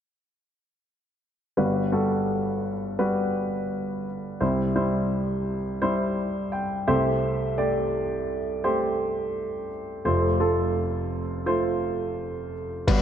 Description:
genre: piano-driven pop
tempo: 85 BPM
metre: 4/4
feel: straight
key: G major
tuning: A4 = 440 Hz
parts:
  - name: warm baby grand piano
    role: accompaniment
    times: 1.6-13.0 s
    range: F1 to G5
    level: -24 LUFS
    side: equal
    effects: none
  - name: lo-fi sampler-style drum kit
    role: drums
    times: 12.9-13.0 s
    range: crash cymbal, hi-hat, kick drum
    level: -20 LUFS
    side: left 1 dB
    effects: none
room: moderate lush hall reverb, RT60 2.5 s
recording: big arena sound, nothing above 10.4 kHz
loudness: -24 LUFS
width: side -9 dB against mid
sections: 1.6-12.9 A section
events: grand piano fill 6.2-7.2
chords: 1.6 Gmaj7; 4.4 C; 6.9 Am7/C; 10.1 F

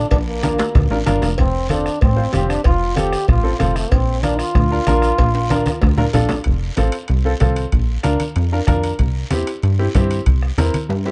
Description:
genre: latin, cumbia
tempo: 189 BPM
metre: 4/4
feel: straight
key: F major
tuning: A4 = 440 Hz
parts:
  - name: breathy trombone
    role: second line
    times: 0.0-6.1 s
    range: A3 to G4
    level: -25 LUFS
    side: equal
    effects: none
  - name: warm upright piano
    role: accompaniment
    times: 0.0-11.1 s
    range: C4 to C5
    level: -25 LUFS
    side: equal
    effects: none
  - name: plucky analog bass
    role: bass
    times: 0.0-11.1 s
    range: F1 to G2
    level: -21 LUFS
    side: equal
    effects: none
  - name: bombo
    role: percussion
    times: 0.1-10.7 s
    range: none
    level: -21 LUFS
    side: equal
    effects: none
  - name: congas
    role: percussion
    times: 0.1-11.1 s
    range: none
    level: -26 LUFS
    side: equal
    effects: none
  - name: cowbell and timbales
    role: percussion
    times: 0.1-11.1 s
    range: none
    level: -31 LUFS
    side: equal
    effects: none
  - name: guiro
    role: percussion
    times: 0.1-11.1 s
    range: none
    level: -38 LUFS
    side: equal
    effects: none
room: little or no reverb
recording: dark, warm production, nothing above 10.3 kHz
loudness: -18 LUFS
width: mono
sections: 0.0-6.5 A section; 6.5-11.1 B section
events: trombone solo 0.0-6.5; drum fill 0.1-1.4, 5.2-6.5, 10.9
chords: 0.0 Bb; 1.4 F; 3.9 Bb; 6.5 F; 7.7 Bb; 9.0 C

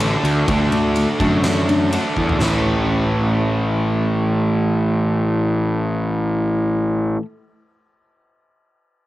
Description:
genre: quiet-loud alternative rock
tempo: 124 BPM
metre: 4/4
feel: straight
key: A major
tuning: A4 = 439 Hz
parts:
  - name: mellow electric guitar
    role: arpeggios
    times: 0.0-7.2 s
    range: A2 to E4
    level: -25 LUFS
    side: left 1 dB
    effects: none
  - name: cranked stack guitar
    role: riff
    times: 0.0-7.2 s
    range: A2 to D4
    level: -21 LUFS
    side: right 1 dB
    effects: overdrive, cassette tape
  - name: fuzz picked electric bass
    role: bass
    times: 0.0-7.2 s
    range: A1 to F#2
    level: -19 LUFS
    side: equal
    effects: overdrive
  - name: huge arena drum kit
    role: drums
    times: 0.0-2.5 s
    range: crash cymbal, kick drum, ride cymbal, snare drum, toms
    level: -25 LUFS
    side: equal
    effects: cassette tape
room: light reverb, small room reverb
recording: home recording on cassette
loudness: -16 LUFS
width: side -16 dB against mid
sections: 0.0-2.4 A section; 2.4-6.3 B section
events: drum fill 2.2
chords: 0.0 D; 2.4 A

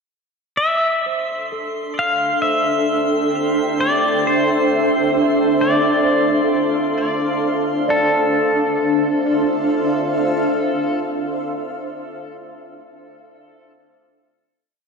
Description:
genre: ambient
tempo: 66 BPM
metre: 4/4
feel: straight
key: D minor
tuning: A4 = 440 Hz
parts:
  - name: pedal steel guitar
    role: melody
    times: 0.6-11.0 s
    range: A4 to F5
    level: -20 LUFS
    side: left 1 dB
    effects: tape echo
  - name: granular cloud pad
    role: sustained chords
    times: 1.8-11.5 s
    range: D4 to G5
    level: -18 LUFS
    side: equal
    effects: built-in reverb
  - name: drifting glass-harmonics texture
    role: texture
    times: 1.1-7.9 s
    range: C6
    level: -32 LUFS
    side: right 1 dB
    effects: chorus, built-in reverb
  - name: worn celesta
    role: arpeggios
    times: 1.1-14.0 s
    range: A4 to E5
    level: -28 LUFS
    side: right 1 dB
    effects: tape echo
room: wet lush hall reverb, RT60 3.4 s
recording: cassette tape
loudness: -16 LUFS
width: side -4 dB against mid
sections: 0.6-7.9 A section; 7.9-11.5 final chord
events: fade-in on synth texture 0.6-7.9; filter sweep on ambient pad 0.6-7.9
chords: 0.6 Am7/D; 4.2 Dm7

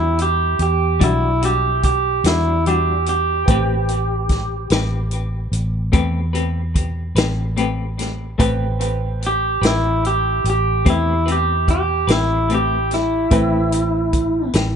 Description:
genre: slow blues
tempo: 49 BPM (dotted quarters)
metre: 12/8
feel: straight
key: unclear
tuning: A4 = 439 Hz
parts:
  - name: electric guitar through a small old amp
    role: melody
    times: 0.0-14.5 s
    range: E4 to G4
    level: -19 LUFS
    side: right 2 dB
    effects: tape echo
  - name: semi-hollow electric guitar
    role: accompaniment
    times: 0.0-14.8 s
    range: E3 to B4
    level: -25 LUFS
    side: left 5 dB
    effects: tremolo, tape echo
  - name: warm upright piano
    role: accompaniment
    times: 0.0-14.8 s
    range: G4 to G5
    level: -29 LUFS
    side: right 7 dB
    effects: tape echo
  - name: vintage muted fingered electric bass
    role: bass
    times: 0.0-14.8 s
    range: A1 to E2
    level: -21 LUFS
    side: equal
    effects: none
  - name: vintage drum kit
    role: drums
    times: 0.2-14.7 s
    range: hi-hat, kick drum, snare drum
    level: -20 LUFS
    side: equal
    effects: none
room: small room ambience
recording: echo-heavy mix, nothing above 10.3 kHz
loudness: -16 LUFS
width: side -7 dB against mid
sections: 0.0-14.8 A section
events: clean electric guitar solo 0.0-14.8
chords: 0.0 Em9; 3.5 Am9

